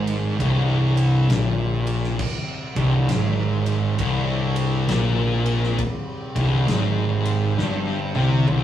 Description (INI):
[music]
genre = stoner and doom metal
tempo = 67 BPM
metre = 4/4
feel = swing 64% on 8ths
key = unclear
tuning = A4 = 439 Hz
[part]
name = overtone-sweeping drone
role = sustained chords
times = 0.0-8.6 s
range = C3 to C4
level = -36 LUFS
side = left 1 dB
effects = none
[part]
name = thick fuzz guitar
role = riff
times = 0.0-8.6 s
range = C2 to C3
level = -22 LUFS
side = left 2 dB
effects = distortion
[part]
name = thick fuzz guitar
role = riff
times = 0.0-8.6 s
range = C2 to C3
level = -24 LUFS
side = right 4 dB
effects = distortion
[part]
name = fuzz fingered electric bass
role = bass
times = 0.0-8.6 s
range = C1 to C2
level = -29 LUFS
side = equal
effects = overdrive
[part]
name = big rock drum kit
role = drums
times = 0.1-8.6 s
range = crash cymbal, kick drum, ride cymbal, snare drum, toms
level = -29 LUFS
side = left 2 dB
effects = none
[sound]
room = moderate studio reverb, RT60 0.7 s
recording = rough rehearsal-room recording, studio reverb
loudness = -19 LUFS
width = side -11 dB against mid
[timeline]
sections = 0.0-8.6 A section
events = drum fill 7.6-8.6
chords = 0.0 C5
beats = 0.40 1.30 | 2.19 3.09 3.99 4.89 | 5.79 6.68 7.58 8.48